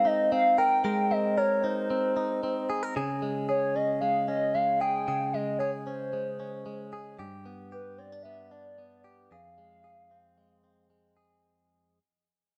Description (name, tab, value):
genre	indie pop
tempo	113 BPM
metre	4/4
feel	straight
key	F minor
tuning	A4 = 438 Hz
part	hollow clarinet-like synth lead	melody	0.0-10.9 s	B4 to G5	-29 LUFS	equal	chorus
part	direct-recorded clean electric guitar	arpeggios	0.0-12.0 s	F2 to Bb4	-34 LUFS	equal	subtle chorus
room	moderate echo chamber reverb, RT60 2.5 s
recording	none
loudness	-28 LUFS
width	mono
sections	0.0-11.4 A section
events	fade-out 0.0-11.4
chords	0.0 Abadd9; 3.0 Db5; 7.2 G; 9.3 Fm